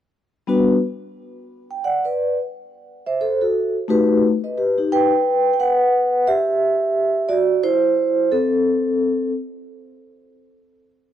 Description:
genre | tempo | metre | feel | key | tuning
hip hop | 88 BPM | 4/4 | swing 60% on 16ths | G major | A4 = 440 Hz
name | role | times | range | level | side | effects
vibraphone with soft mallets | solo | 0.5-9.3 s | G3 to G5 | -17 LUFS | equal | none
room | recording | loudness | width
little or no reverb | dry, close 1970s-style studio recording | -16 LUFS | side -10 dB against mid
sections
0.0-4.9 A section; 4.9-11.1 B section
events
vibraphone solo 4.9-11.1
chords
0.0 Gmaj7; 2.2 N.C.; 3.5 B7b13; 4.9 Gmaj7; 7.6 C6; 9.0 N.C.

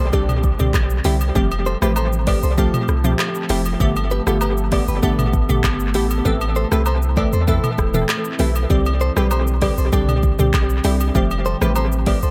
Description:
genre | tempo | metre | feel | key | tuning
afrobeats | 98 BPM | 4/4 | straight | unclear | A4 = 440 Hz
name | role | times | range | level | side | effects
deep dark ambient pad | sustained chords | 0.4-12.3 s | D3 to C5 | -31 LUFS | equal | chorus, built-in reverb
direct-recorded clean electric guitar | riff | 0.0-12.3 s | D4 to D5 | -29 LUFS | equal | tape echo
punchy sub bass | bass | 0.0-12.3 s | E1 to E2 | -22 LUFS | equal | none
downlifter | sound effects | 0.0-3.8 s | none | -42 LUFS | equal | none
glassy wavetable pluck | accompaniment | 0.1-12.2 s | D3 to A4 | -25 LUFS | equal | chorus, tape echo
afro-pop drum kit | drums | 0.1-12.3 s | handclaps, hi-hat, kick drum, rim click, shaker, toms | -24 LUFS | equal | tape echo
agogo bells and woodblock | percussion | 0.3-12.2 s | none | -32 LUFS | equal | tape echo
room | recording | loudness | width
light reverb, digital ambience | echo-heavy mix | -18 LUFS | mono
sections
0.0-12.3 A section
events
none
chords
0.0 Csus2; 1.4 Fadd9; 3.8 Gadd9; 6.3 Am; 8.7 Csus2; 11.2 Fadd9

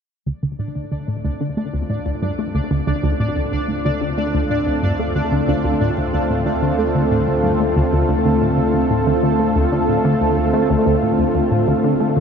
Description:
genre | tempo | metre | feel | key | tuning
ambient, sequencer-driven space music | 92 BPM | 4/4 | straight | D minor | A4 = 440 Hz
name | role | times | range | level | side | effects
lush unison pad | sustained chords | 0.3-12.2 s | D3 to A4 | -19 LUFS | right 1 dB | chorus
tight sequenced synth | riff | 0.3-12.2 s | D2 to A3 | -20 LUFS | left 1 dB | chorus, cassette tape, ping-pong delay
round analog bass | bass | 0.3-10.7 s | D2 | -30 LUFS | equal | none
pulsing gated texture | texture | 0.6-10.7 s | D4 to D5 | -26 LUFS | equal | chorus, built-in reverb
vibraphone with soft mallets | arpeggios | 10.7-12.2 s | none | barely audible | none | none
room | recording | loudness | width
wet huge ambient reverb, RT60 7.1 s | none | -16 LUFS | side -7 dB against mid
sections
0.3-10.7 A section; 10.7-12.2 B section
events
fade-in on analog synth pad 0.3-10.7; fade-in on analog synth bass 0.3-10.7; filter sweep on synth arpeggio sound 0.3-10.7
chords
0.3 Dm7

